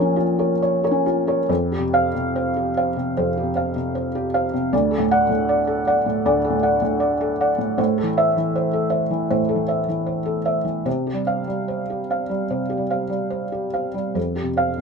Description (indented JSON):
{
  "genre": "neoclassical minimalist piano",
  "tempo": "67-81 BPM",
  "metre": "4/4",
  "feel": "rubato",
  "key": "F major",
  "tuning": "A4 = 439 Hz",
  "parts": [
    { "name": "felt-muted upright piano", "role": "solo", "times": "0.0-14.8 s", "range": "D2 to F#5", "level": "-19 LUFS", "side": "equal", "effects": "none" }
  ],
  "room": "light reverb",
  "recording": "minimal, uncompressed stereo recording",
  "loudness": "-19 LUFS",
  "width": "side -5 dB against mid",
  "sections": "0.0-1.5 A section; 1.5-14.8 B section",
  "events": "none",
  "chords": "0.0 Bbm; 1.5 Fsus2; 4.7 D; 7.8 Am; 10.9 Csus4; 14.2 Fsus2",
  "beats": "0.63 | 1.49 2.34 3.15 3.94 | 4.72 5.49 6.25 7.01 | 7.78 8.54 9.29 10.06 | 10.86 11.68 12.49 13.31 | 14.16"
}